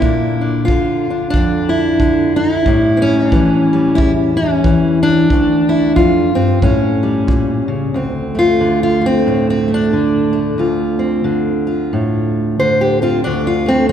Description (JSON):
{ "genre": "acoustic country blues, solo or duo", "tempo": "91 BPM", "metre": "4/4", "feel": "swing 61% on 8ths", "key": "D minor", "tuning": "A4 = 439 Hz", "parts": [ { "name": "fingerpicked steel-string acoustic guitar", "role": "melody", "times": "0.0-13.9 s", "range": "D2 to C5", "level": "-12 LUFS", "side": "equal", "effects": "none" }, { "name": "kick drum", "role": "drums", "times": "0.0-7.5 s", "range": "none", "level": "-19 LUFS", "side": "equal", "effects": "none" } ], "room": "wet church reverb, RT60 2.8 s", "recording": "recorded in a church or concert hall", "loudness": "-12 LUFS", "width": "side -9 dB against mid", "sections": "0.0-7.9 A section; 7.9-13.9 B section", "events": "steel-string acoustic guitar solo 7.9-13.9", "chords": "0.0 Bb; 2.7 A7; 5.3 Dm; 6.6 A7; 7.9 Dm7" }